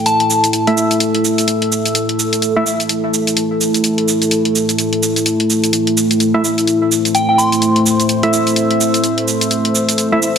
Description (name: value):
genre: bass house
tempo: 127 BPM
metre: 4/4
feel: swing 60% on 16ths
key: A minor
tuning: A4 = 440 Hz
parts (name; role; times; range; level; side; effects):
- deep dark ambient pad; sustained chords; 0.0-10.4 s; A3 to C5; -16 LUFS; equal; chorus, built-in reverb
- soft synth bell; melody; 0.1-0.5, 7.1-8.1 s; G5 to C6; -17 LUFS; left 1 dB; chorus, tape echo
- electronic hi-hat and shaker; drums; 0.1-10.4 s; none; -18 LUFS; right 1 dB; none
- percussive organ stab; stabs; 0.7-2.6, 6.3-10.2 s; A3 to E5; -18 LUFS; right 1 dB; chorus, tape echo
room: wet digital room reverb, RT60 1.1 s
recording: dense, heavily limited modern master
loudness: -12 LUFS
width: side -7 dB against mid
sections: 0.0-10.4 A section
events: none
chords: 0.0 A5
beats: | 0.06 0.53 1.00 1.48 | 1.95 2.42 2.89 3.37 | 3.84 4.31 4.78 5.26 | 5.73 6.20 6.67 7.15 | 7.62 8.09 8.56 9.04 | 9.51 9.98